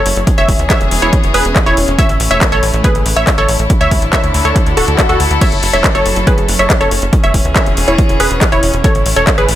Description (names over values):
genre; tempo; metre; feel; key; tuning
uplifting trance; 140 BPM; 4/4; straight; unclear; A4 = 440 Hz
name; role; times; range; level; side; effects
wide unison pluck; melody; 0.0-9.6 s; E4 to E5; -15 LUFS; equal; sidechain pumping, digital delay
rich chamber string section; sustained chords; 0.0-9.6 s; D3 to A4; -20 LUFS; left 2 dB; sidechain pumping
tight sequencer bass; bass; 0.0-9.6 s; D1 to D2; -17 LUFS; equal; sidechain pumping
techno drum kit; drums; 0.1-9.6 s; crash cymbal, handclaps, hi-hat; -18 LUFS; left 1 dB; sidechain pumping on hats, sidechain pumping on cymbals
electronic kick drum; drums; 0.3-9.4 s; none; -13 LUFS; equal; none
swell; sound effects; 4.7-5.4 s; none; -23 LUFS; left 1 dB; none
room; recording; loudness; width
light reverb; none; -9 LUFS; side -12 dB against mid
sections
0.0-9.6 A section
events
swell 4.7-5.4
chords
0.3 E6; 2.0 A; 3.7 Dsus2; 5.4 F#m7; 7.1 E6; 8.8 A